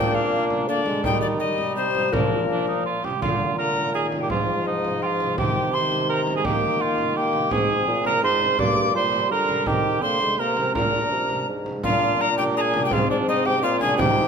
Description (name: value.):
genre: classical, renaissance-style consort dance.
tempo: 167 BPM.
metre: 3/4.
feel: straight.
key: Bb mixolydian.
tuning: A4 = 436 Hz.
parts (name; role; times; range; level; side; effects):
alto recorder; melody; 0.0-14.3 s; Bb4 to D6; -26 LUFS; left 6 dB; none.
mellow cor anglais; second line; 0.0-14.3 s; D4 to D5; -24 LUFS; right 5 dB; none.
clear trombone; accompaniment; 0.0-14.3 s; D3 to Eb4; -29 LUFS; left 3 dB; none.
mellow bassoon; bass; 0.0-14.3 s; G2 to Eb3; -26 LUFS; equal; none.
frame drum; percussion; 0.5-14.2 s; none; -29 LUFS; right 2 dB; none.
room: wet recital hall reverb, RT60 1.7 s.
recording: none.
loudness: -20 LUFS.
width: side -6 dB against mid.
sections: 0.0-3.2 A section; 3.2-11.8 B section; 11.8-14.3 B section.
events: none.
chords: 0.0 Bb; 1.0 Eb; 2.1 Bb; 4.3 Fm/Ab; 5.4 Cm; 6.4 Eb; 7.5 Ab; 8.6 Gm; 9.7 Eb; 10.7 Bb; 12.9 Abmaj13.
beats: 0.33 0.69 | 1.04 1.40 1.76 | 2.13 2.50 2.86 | 3.22 3.58 3.94 | 4.30 4.66 5.02 | 5.38 5.73 6.09 | 6.45 6.81 7.16 | 7.52 7.88 8.23 | 8.59 8.95 9.31 | 9.66 10.02 10.38 | 10.75 11.11 11.48 | 11.84 12.20 12.56 | 12.92 13.28 13.63 | 13.99.